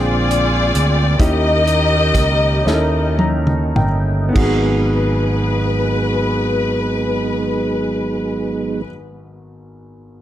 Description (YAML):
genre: slow gospel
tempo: 32-47 BPM (dotted quarters)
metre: 6/8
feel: straight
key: G# minor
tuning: A4 = 438 Hz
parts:
  - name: muted studio string section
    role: melody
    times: 0.0-8.8 s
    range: E#4 to D#5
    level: -20 LUFS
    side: left 3 dB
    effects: none
  - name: warm concert grand piano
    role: accompaniment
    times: 0.0-10.2 s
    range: G#1 to A#5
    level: -23 LUFS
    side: equal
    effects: none
  - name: percussive tonewheel organ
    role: sustained chords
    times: 0.0-8.8 s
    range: D3 to G5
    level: -22 LUFS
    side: right 3 dB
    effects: slow rotary speaker, chorus vibrato
  - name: fingered electric bass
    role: bass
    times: 0.0-8.8 s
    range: G1 to D#2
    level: -19 LUFS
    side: equal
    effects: none
  - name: warm soul drum kit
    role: drums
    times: 0.3-4.6 s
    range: crash cymbal, hi-hat, kick drum, snare drum, toms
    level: -20 LUFS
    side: equal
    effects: none
room: light reverb, small room ambience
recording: none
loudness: -14 LUFS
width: side -12 dB against mid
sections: 0.0-4.4 A section; 4.4-8.1 B section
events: slowing down 0.0-4.4; drum fill 2.7-4.4; grand piano fill 2.7-4.4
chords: 0.0 A#13; 1.2 D#7b9; 4.4 G#m7